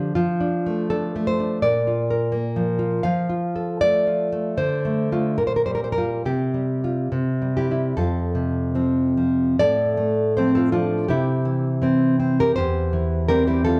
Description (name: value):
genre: romantic piece for solo classical guitar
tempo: 67-86 BPM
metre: 2/4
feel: rubato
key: F major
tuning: A4 = 439 Hz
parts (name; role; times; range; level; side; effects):
- nylon-string guitar; solo; 0.0-13.8 s; E2 to F5; -22 LUFS; equal; none
room: moderate recital hall reverb, RT60 1.5 s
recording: dark, warm production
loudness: -22 LUFS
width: mono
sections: 0.0-8.0 A section; 8.0-13.8 B section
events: none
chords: 0.2 Dm/F; 1.6 Bb; 3.1 F; 4.6 Dm; 5.4 Gm7/Bb; 6.2 Csus4; 7.1 C; 8.0 F; 9.6 F/A; 11.1 C; 12.6 C/E